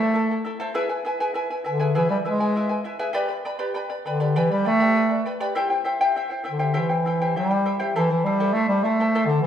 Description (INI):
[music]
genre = andean folk, Andean ensemble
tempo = 100 BPM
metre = 4/4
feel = straight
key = unclear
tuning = A4 = 444 Hz
[part]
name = warm bass clarinet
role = melody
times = 0.0-9.5 s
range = D3 to A3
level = -20 LUFS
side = equal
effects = none
[part]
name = charango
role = accompaniment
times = 0.0-9.5 s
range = E4 to B5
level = -25 LUFS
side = left 1 dB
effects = none
[sound]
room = wet large studio reverb, RT60 1.3 s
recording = band playing live in one room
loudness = -20 LUFS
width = side -9 dB against mid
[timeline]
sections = 0.0-9.5 A section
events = none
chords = 0.0 Am; 0.7 E; 3.2 G; 5.6 C; 7.9 Am